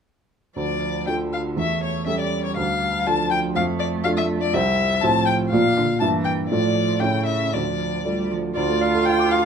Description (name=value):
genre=quick classical-period movement for piano trio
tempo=120 BPM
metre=2/4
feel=straight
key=D minor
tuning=A4 = 441 Hz
part: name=rich violin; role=melody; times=0.6-9.5 s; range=C#5 to A5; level=-23 LUFS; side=left 4 dB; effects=none
part: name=rich cello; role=second line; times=0.6-9.5 s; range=C#3 to F4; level=-27 LUFS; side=right 6 dB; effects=none
part: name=warm baby grand piano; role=accompaniment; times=0.6-9.5 s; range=C2 to D6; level=-22 LUFS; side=right 1 dB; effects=none
room=moderate large studio reverb, RT60 0.8 s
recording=minimal, uncompressed stereo recording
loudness=-19 LUFS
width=side -7 dB against mid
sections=0.6-8.6 A section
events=none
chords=0.6 Dm; 1.6 A7/E; 2.6 Dm; 3.6 Dm/F; 4.5 C; 5.0 F/A; 5.5 Bb; 6.0 Edim/G; 6.5 Dm/A; 7.0 A7; 7.5 Dm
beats=| 0.56 1.07 | 1.57 2.07 | 2.57 3.07 | 3.56 4.05 | 4.54 5.03 | 5.52 6.01 | 6.51 7.01 | 7.53 8.05 | 8.56 9.06